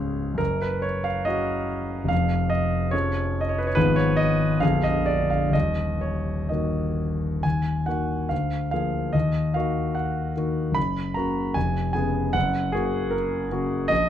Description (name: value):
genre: classical, romantic character piece for solo piano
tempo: 62-78 BPM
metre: 2/4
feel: rubato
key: Eb minor from 3.8 s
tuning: A4 = 440 Hz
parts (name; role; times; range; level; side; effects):
- warm concert grand piano; solo; 0.0-14.1 s; Bb0 to Cb6; -22 LUFS; equal; none
room: moderate studio reverb, RT60 0.8 s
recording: dark, warm production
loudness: -22 LUFS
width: side -10 dB against mid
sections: 0.0-7.4 A section; 7.4-14.1 B section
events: none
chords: 0.4 F#5; 2.1 C#/E#; 3.8 Fdim/Ab; 4.6 Bb7b9; 5.5 Ebm; 8.3 Bb7/D; 9.1 Ebm; 10.8 Gb; 11.6 Db7/F; 12.4 Gb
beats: | 0.40 1.26 | 2.11 2.93 | 3.76 4.62 | 5.54 6.50 | 7.44 8.31 | 9.14 9.95 | 10.76 11.56 | 12.35 13.14 | 13.91